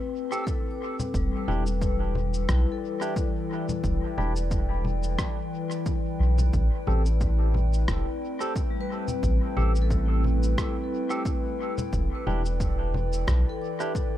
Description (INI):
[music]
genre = ambient dub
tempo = 89 BPM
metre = 4/4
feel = swing 55% on 16ths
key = A minor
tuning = A4 = 440 Hz
[part]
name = warbly tape-like pad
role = sustained chords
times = 0.0-14.2 s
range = E3 to G5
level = -32 LUFS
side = left 1 dB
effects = chorus, built-in reverb
[part]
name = vibraphone with hard mallets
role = arpeggios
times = 0.0-14.2 s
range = G3 to D6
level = -35 LUFS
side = left 7 dB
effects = dub echo
[part]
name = barky tine electric piano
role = stabs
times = 0.3-13.9 s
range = C4 to A4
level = -35 LUFS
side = right 1 dB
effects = overdrive, phaser, dub echo
[part]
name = electronic cabasa, congas and rim click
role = drums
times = 0.3-14.1 s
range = none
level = -35 LUFS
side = left 1 dB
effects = small room ambience, dub echo
[part]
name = electronic kick drum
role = drums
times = 0.5-14.1 s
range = none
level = -29 LUFS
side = equal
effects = overdrive, small room ambience
[part]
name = soft dub sub bass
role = bass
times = 1.1-13.4 s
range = E1 to B1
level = -24 LUFS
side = equal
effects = none
[sound]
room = little or no reverb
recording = echo-heavy mix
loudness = -24 LUFS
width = side -13 dB against mid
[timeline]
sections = 0.0-14.2 A section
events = none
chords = 0.0 Am7; 1.1 Em7; 6.5 Am7; 11.9 Em7